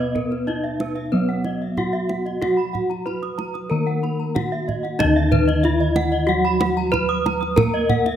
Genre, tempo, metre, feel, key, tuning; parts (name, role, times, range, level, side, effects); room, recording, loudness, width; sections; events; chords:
Balinese gamelan; 93 BPM; 4/4; straight; Eb pelog; A4 = 438 Hz
gamelan-type bronze metallophone; melody; 0.0-8.2 s; Cb4 to Cb5; -24 LUFS; equal
gamelan-type bronze metallophone; accompaniment; 0.0-8.2 s; Eb3 to Cb4; -28 LUFS; right 4 dB
gamelan-type bronze metallophone; arpeggios; 0.0-7.9 s; Cb5 to Eb6; -28 LUFS; right 5 dB
gamelan-type bossed gongs; bass; 0.0-8.2 s; Eb2 to Cb5; -24 LUFS; left 1 dB
gamelan-type bronze metallophone; arpeggios; 0.2-8.2 s; Bb4 to Eb6; -27 LUFS; left 6 dB
kendang; percussion; 0.2-8.1 s; -25 LUFS; right 3 dB
light reverb; close, detailed microphones; -19 LUFS; side -10 dB against mid
0.0-8.2 A section